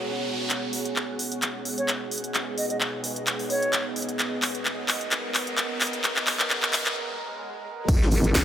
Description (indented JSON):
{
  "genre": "bass house",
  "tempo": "130 BPM",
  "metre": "4/4",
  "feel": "swing 54% on 16ths",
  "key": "G# minor",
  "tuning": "A4 = 440 Hz",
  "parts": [
    { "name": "deep dark ambient pad", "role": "sustained chords", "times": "0.0-8.4 s", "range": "B3 to D#5", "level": "-33 LUFS", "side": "right 2 dB", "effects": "chorus, built-in reverb, sidechain pumping" },
    { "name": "riser, swell and impact", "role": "sound effects", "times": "0.0-8.4 s", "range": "none", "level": "-35 LUFS", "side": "equal", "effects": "none" },
    { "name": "granular cloud pad", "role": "texture", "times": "0.0-8.4 s", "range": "G#4 to A#5", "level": "-37 LUFS", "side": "right 1 dB", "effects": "built-in reverb, sidechain pumping" },
    { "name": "house drum kit", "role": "drums", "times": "0.5-8.4 s", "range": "crash cymbal, handclaps, hi-hat, ride cymbal, snare drum", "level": "-26 LUFS", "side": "equal", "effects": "none" },
    { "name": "reedy concert flute", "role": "melody", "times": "1.8-3.9 s", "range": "C#5 to D#5", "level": "-30 LUFS", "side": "equal", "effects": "tape echo" },
    { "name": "vowel-sweep wobble bass", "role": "bass", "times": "7.9-8.4 s", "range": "G#1", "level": "-22 LUFS", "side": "equal", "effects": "chorus, sidechain pumping" },
    { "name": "electronic kick drum", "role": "drums", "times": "7.9-8.4 s", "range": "none", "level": "-22 LUFS", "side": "equal", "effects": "none" },
    { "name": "tambourine and snare drum", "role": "drums", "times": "7.9-8.4 s", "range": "none", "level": "-36 LUFS", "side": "equal", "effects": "high-pass filter on snare, high-pass filter on perc, high-pass filter on room" }
  ],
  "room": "moderate lush hall reverb, RT60 1.8 s, studio reverb",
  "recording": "high-pass filter",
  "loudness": "-24 LUFS",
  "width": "side -10 dB against mid",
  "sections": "0.5-7.9 A section",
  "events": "riser 0.0-0.5, 0.5-7.0; build-up 0.5-7.9; drum fill 0.5-7.0; break 7.0-7.9; swell 7.0-7.9; impact 7.9-8.4",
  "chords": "0.0 G#m"
}